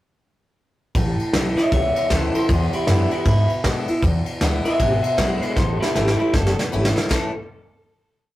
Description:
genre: rockabilly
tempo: 156 BPM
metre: 4/4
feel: swing 62% on 8ths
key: A major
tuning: A4 = 441 Hz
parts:
  - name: upright bass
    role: bass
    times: 0.9-7.3 s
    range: F#1 to B2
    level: -22 LUFS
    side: equal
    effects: none
  - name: soft brush drum kit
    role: drums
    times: 0.9-7.2 s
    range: kick drum, ride cymbal, snare drum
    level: -23 LUFS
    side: equal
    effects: none
  - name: picked steel-string acoustic guitar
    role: accompaniment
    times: 1.0-7.3 s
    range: E2 to E4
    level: -24 LUFS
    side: equal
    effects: none
  - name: electric guitar through a small old amp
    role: melody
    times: 1.6-7.3 s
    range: E4 to E5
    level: -23 LUFS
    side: equal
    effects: spring reverb, slapback echo
room: moderate studio ambience, RT60 0.5 s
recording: rough rehearsal-room recording, warm saturation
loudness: -17 LUFS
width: side -15 dB against mid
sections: 0.9-7.1 A section; 7.1-8.4 final chord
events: drum fill 5.6-7.1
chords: 0.9 A; 2.5 E7; 5.6 A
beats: | 0.95 1.33 1.72 2.10 | 2.49 2.87 3.26 3.65 | 4.03 4.42 4.80 5.19 | 5.57 5.96 6.34 6.72 | 7.11

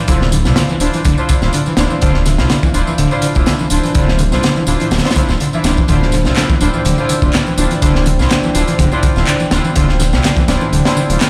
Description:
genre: breakbeat, breaks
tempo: 124 BPM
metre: 4/4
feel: swing 54% on 16ths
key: D minor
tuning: A4 = 439 Hz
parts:
  - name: dark analog pad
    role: sustained chords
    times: 0.0-11.3 s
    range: D4 to G5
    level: -26 LUFS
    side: equal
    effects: chorus, sidechain pumping
  - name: overdriven acid bass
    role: riff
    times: 0.0-11.3 s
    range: D3 to D4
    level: -20 LUFS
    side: equal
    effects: distortion, lush chorus, delay
  - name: muted studio string section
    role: stabs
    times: 0.1-11.2 s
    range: D4 to E5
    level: -22 LUFS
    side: equal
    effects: low-pass filter, delay
  - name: dark detuned saw bass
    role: bass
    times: 0.1-11.2 s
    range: D1 to C2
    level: -18 LUFS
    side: equal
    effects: none
  - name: crunchy breakbeat drum kit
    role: drums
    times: 0.1-11.3 s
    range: hi-hat, kick drum, snare drum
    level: -19 LUFS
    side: equal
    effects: none
  - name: electronic tambourine and handclaps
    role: drums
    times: 0.1-11.3 s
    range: none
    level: -27 LUFS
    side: equal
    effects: none
  - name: congas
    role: percussion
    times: 6.0-11.2 s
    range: none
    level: -31 LUFS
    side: equal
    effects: none
room: light reverb, studio reverb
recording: played on a big sound system in a bare room, large studio reverb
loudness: -14 LUFS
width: mono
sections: 0.0-11.3 A section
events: none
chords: 0.0 Dm9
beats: | 0.08 0.56 1.05 1.53 | 2.02 2.50 2.98 3.47 | 3.95 4.44 4.92 5.40 | 5.89 6.37 6.86 7.34 | 7.82 8.31 8.79 9.28 | 9.76 10.24 10.73 11.21

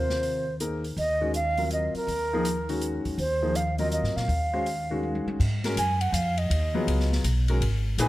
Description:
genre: modal jazz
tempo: 163 BPM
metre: 3/4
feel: swing 64% on 8ths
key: unclear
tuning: A4 = 440 Hz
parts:
  - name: breathy mellow concert flute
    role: melody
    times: 0.0-8.1 s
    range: Bb4 to G#5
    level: -28 LUFS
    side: right 1 dB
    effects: none
  - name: clear grand piano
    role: accompaniment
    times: 0.0-8.1 s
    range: A#2 to C5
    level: -30 LUFS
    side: left 2 dB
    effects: none
  - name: upright bass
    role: bass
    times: 0.0-8.1 s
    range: G#1 to Bb2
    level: -27 LUFS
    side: equal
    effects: none
  - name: open jazz drum kit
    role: drums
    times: 0.1-8.1 s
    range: crash cymbal, hi-hat, kick drum, ride cymbal, snare drum, toms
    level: -35 LUFS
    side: left 1 dB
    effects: none
room: light reverb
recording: none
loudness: -24 LUFS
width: side -16 dB against mid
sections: 0.0-5.4 A section; 5.4-8.1 B section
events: drum fill 5.0-5.4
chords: 0.0 Ebsus2; 1.0 Db/Eb; 5.4 G#m9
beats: 0.23 0.60 | 0.97 1.34 1.71 | 2.08 2.45 2.82 | 3.19 3.55 3.92 | 4.29 4.66 5.03 | 5.40 5.77 6.14 | 6.50 6.87 7.24 | 7.61 7.98

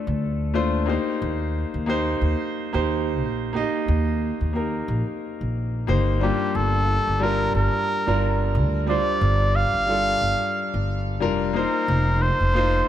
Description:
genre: sunset chillout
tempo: 90 BPM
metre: 4/4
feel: swing 57% on 16ths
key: G minor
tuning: A4 = 437 Hz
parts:
  - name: warm concert grand piano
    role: accompaniment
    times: 0.0-12.9 s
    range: G3 to Eb5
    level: -25 LUFS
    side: moving between left 6 dB and right 5 dB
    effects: auto-pan, digital delay
  - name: upright bass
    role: bass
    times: 0.1-12.8 s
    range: F1 to Eb2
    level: -24 LUFS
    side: equal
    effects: none
  - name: trumpet with cup mute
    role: melody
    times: 6.2-12.9 s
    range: G4 to F5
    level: -24 LUFS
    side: equal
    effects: tape echo
room: light reverb, small room ambience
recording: none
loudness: -20 LUFS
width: side -11 dB against mid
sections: 0.0-12.9 A section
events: none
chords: 0.0 Dm7; 0.9 Eb6; 6.2 Gm7; 11.5 F7sus4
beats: 0.21 | 0.88 1.55 2.21 2.88 | 3.55 4.21 4.88 5.55 | 6.21 6.88 7.55 8.21 | 8.88 9.55 10.21 10.88 | 11.55 12.21 12.88

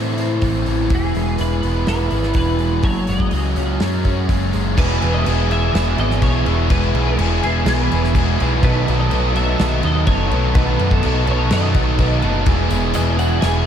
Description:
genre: rock, shoegaze and dream pop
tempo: 125 BPM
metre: 4/4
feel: straight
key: E major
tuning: A4 = 440 Hz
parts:
  - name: twelve-string electric guitar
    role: melody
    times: 0.0-13.6 s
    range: G#4 to G#5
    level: -27 LUFS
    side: equal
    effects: ensemble chorus, diffuse ambient delay
  - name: fingerpicked twelve-string acoustic guitar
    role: arpeggios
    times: 0.0-13.7 s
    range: E3 to G#4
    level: -29 LUFS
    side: left 2 dB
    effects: none
  - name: biting overdriven guitar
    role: riff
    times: 0.0-13.7 s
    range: A2 to A4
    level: -24 LUFS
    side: left 7 dB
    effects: analog chorus
  - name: overdriven electric guitar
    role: riff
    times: 0.0-13.7 s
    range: A2 to A4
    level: -22 LUFS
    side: right 8 dB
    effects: reverse reverb
  - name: growling picked electric bass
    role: bass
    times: 0.0-13.6 s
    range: E1 to A2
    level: -19 LUFS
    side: equal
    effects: overdrive
  - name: loose indie drum kit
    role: drums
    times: 0.2-13.5 s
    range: crash cymbal, hi-hat, kick drum, snare drum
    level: -22 LUFS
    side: equal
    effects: none
  - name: tight distorted guitar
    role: riff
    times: 4.8-13.7 s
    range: E2 to B3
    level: -27 LUFS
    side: right 1 dB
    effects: distortion
  - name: tambourine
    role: percussion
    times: 12.5-13.5 s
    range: none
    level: -38 LUFS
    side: right 9 dB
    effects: none
room: moderate lush hall reverb, RT60 1.9 s, small room ambience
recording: dreamy mix soaked in reverb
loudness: -15 LUFS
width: side -9 dB against mid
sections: 0.0-4.8 A section; 4.8-13.7 B section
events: none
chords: 0.0 Am; 0.9 E; 2.9 F#sus2; 4.8 E; 8.6 B7; 12.5 E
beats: 0.43 | 0.92 1.40 1.88 2.37 | 2.85 3.33 3.82 4.30 | 4.78 5.26 5.75 6.23 | 6.71 7.19 7.67 8.15 | 8.63 9.11 9.59 10.07 | 10.55 11.03 11.51 11.99 | 12.47 12.95 13.43

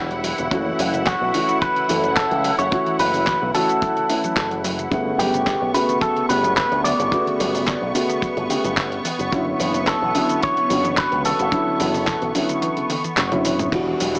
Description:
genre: nu-disco, nu disco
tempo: 109 BPM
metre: 4/4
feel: straight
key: unclear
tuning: A4 = 440 Hz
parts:
  - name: dark baby grand piano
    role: accompaniment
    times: 0.0-14.2 s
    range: C#3 to F#5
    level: -23 LUFS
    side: equal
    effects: none
  - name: lush unison pad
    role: sustained chords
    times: 0.0-14.2 s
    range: B3 to C#6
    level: -26 LUFS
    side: equal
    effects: chorus, phaser, sidechain pumping
  - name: soft round pluck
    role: arpeggios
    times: 0.0-14.2 s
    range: C#3 to F#3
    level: -34 LUFS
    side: equal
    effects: chorus, sidechain pumping, analog delay
  - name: picked electric bass with an envelope filter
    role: bass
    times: 0.0-14.2 s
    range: E1 to D2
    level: -26 LUFS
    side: equal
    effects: tube saturation
  - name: dusty soul sampler-style drum kit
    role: drums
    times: 0.1-14.2 s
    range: handclaps, hi-hat, ride cymbal, shaker, toms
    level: -25 LUFS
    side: equal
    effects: overdrive, small room ambience, cassette tape
  - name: kick drum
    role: drums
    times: 0.5-13.8 s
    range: none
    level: -25 LUFS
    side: equal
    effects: small room ambience, cassette tape
  - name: electric guitar with an envelope filter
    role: melody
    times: 1.1-13.1 s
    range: F#4 to D5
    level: -21 LUFS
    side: equal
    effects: cassette tape, analog delay
room: light reverb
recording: home recording on cassette, small speaker sound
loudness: -17 LUFS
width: side -29 dB against mid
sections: 0.0-14.2 A section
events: kick drops out 12.6-13.7; drum fill 12.9-13.7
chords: 0.0 Em9; 0.5 F#m7; 4.9 Gmaj9#11; 9.0 Dmaj9/F#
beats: | 0.52 1.07 1.62 2.17 | 2.72 3.27 3.82 4.37 | 4.92 5.47 6.02 6.57 | 7.12 7.67 8.22 8.77 | 9.32 9.88 10.43 10.97 | 11.53 12.08 12.63 13.18 | 13.73

